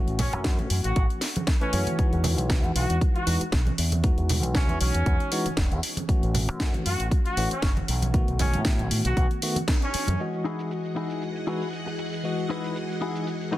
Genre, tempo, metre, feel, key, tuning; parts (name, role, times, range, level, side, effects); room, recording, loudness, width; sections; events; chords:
nu-disco, nu disco; 117 BPM; 4/4; swing 55% on 16ths; E major; A4 = 440 Hz
bright tine electric piano; accompaniment; 0.0-13.6 s; D#3 to D#5; -31 LUFS; left 1 dB; medium tremolo, low-pass filter, digital delay
fingered electric bass with an envelope filter; bass; 0.1-10.2 s; E1 to A2; -26 LUFS; equal
house drum kit; drums; 0.1-13.6 s; hi-hat, shaker, snare drum; -31 LUFS; equal; low-pass filter on hats, low-pass filter on snare, low-pass filter on perc
mellow trumpet section; melody; 0.2-10.2 s; C#4 to F#4; -33 LUFS; equal; digital delay
electronic kick drum; drums; 0.2-9.8 s; -24 LUFS; equal
congas; percussion; 0.2-10.2 s; -33 LUFS; right 2 dB
string machine, full ensemble; sustained chords; 10.2-13.6 s; E3 to F#5; -33 LUFS; left 1 dB; ensemble chorus, sidechain pumping
direct-recorded clean electric guitar; riff; 10.4-13.6 s; D#4 to B4; -33 LUFS; left 4 dB; analog chorus, low-pass filter, digital delay
light reverb, digital ambience; dense, heavily limited modern master; -23 LUFS; side -15 dB against mid
0.0-10.2 A section; 10.2-13.6 B section
band accent 9.7
0.0 A6; 2.0 Emaj9; 5.8 A6; 8.1 B7; 10.2 Emaj9